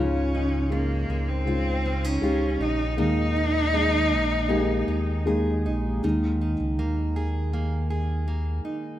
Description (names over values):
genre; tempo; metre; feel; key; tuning
pop ballad; 80 BPM; 4/4; straight; unclear; A4 = 439 Hz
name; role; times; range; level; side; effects
rich cello; melody; 0.0-5.2 s; Bb3 to Eb4; -26 LUFS; equal; none
felt-muted upright piano; accompaniment; 0.0-9.0 s; Ab2 to Ab4; -28 LUFS; left 1 dB; none
fingerpicked steel-string acoustic guitar; arpeggios; 0.0-9.0 s; Db3 to Ab4; -32 LUFS; right 3 dB; none
sub bass with octave; bass; 0.0-8.6 s; Bb1 to Eb2; -26 LUFS; equal; none
room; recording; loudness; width
moderate lush hall reverb, RT60 2.7 s; rough home demo mix; -22 LUFS; side -13 dB against mid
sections
0.0-6.0 A section; 6.0-9.0 B section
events
none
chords
0.0 Dbadd9; 3.0 Ebsus4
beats
0.72 1.47 2.23 | 2.98 3.74 4.50 5.27 | 6.04 6.79 7.53 8.27